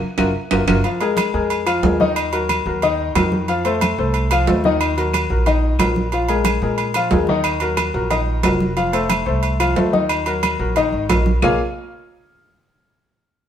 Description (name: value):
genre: latin, salsa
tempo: 181 BPM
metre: 4/4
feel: straight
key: unclear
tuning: A4 = 440 Hz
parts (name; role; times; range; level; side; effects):
- clear concert grand piano; accompaniment; 0.2-11.6 s; Eb3 to F5; -20 LUFS; left 3 dB; none
- upright bass; bass; 0.2-11.6 s; F1 to Bb2; -22 LUFS; right 1 dB; none
- claves; percussion; 0.2-11.5 s; none; -31 LUFS; left 6 dB; none
- congas; percussion; 0.2-11.5 s; none; -24 LUFS; right 1 dB; none
- timbales and agogo bells; percussion; 0.2-11.5 s; none; -22 LUFS; right 3 dB; none
room: moderate stone room reverb, RT60 1.1 s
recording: band playing live in one room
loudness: -16 LUFS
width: side -9 dB against mid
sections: 0.8-11.4 A section; 11.4-12.8 B section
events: drum fill 0.0-0.8; band accent 0.0-0.8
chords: 0.0 Gbmaj7; 0.8 Bb5; 2.2 Ebm; 3.5 F7; 4.8 Ebm; 6.1 Bb5; 7.5 Ebm; 8.8 F7; 10.1 Ebm; 11.4 Bbm7